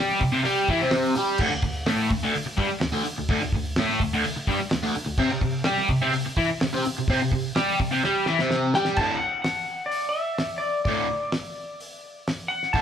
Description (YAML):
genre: garage rock duo or trio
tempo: 127 BPM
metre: 4/4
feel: straight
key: D mixolydian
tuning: A4 = 440 Hz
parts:
  - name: crunchy overdriven guitar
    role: riff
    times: 0.0-12.8 s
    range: D2 to G4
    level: -23 LUFS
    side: equal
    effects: phaser
  - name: cloth-damped thuddy drum kit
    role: drums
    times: 0.1-12.8 s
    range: crash cymbal, hi-hat, kick drum, snare drum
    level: -28 LUFS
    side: equal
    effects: none
  - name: clean lap steel guitar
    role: melody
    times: 8.8-12.8 s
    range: D5 to A5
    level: -26 LUFS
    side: left 1 dB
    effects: digital delay
room: moderate large studio reverb, RT60 1.4 s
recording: band playing live in one room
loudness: -22 LUFS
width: side -8 dB against mid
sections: 0.0-9.0 A section; 9.0-12.8 B section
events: drum fill 8.0-9.0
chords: 0.0 C5; 1.4 D5; 5.2 C5; 9.0 D